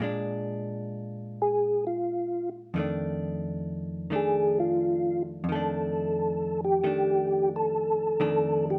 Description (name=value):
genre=jazz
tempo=88 BPM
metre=4/4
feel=swing 68% on 8ths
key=F mixolydian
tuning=A4 = 437 Hz
part: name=hollow-body jazz guitar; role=accompaniment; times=0.0-8.8 s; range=F2 to D4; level=-34 LUFS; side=equal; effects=none
part: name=percussive tonewheel organ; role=melody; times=1.4-8.8 s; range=F4 to A4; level=-28 LUFS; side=equal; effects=slow rotary speaker, chorus vibrato, plate reverb
room=moderate club reverb, RT60 0.5 s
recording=none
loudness=-28 LUFS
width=mono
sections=0.0-8.8 A section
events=tonewheel organ solo 0.0-8.8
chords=0.0 Bb7; 2.7 F13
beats=| 0.00 0.69 1.37 2.05 | 2.73 3.42 4.10 4.79 | 5.47 6.15 6.84 7.52 | 8.21